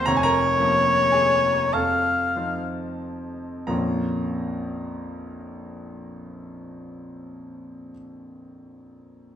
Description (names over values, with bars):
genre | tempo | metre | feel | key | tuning
classical, romantic duo for oboe and grand piano | 29-40 BPM (dotted quarters) | 6/8 | rubato | Bb minor | A4 = 441 Hz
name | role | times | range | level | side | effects
clear oboe | melody | 0.0-2.7 s | Db5 to F5 | -20 LUFS | left 2 dB | none
clear grand piano | accompaniment | 0.0-9.4 s | F1 to C6 | -27 LUFS | right 1 dB | none
room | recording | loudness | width
wet recital hall reverb, RT60 1.8 s | minimal, uncompressed stereo recording | -20 LUFS | side -9 dB against mid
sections
0.0-3.7 A section; 3.7-7.5 B section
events
slowing down 0.0-3.7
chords
0.1 Bbm/F; 1.7 F7; 3.7 Bbm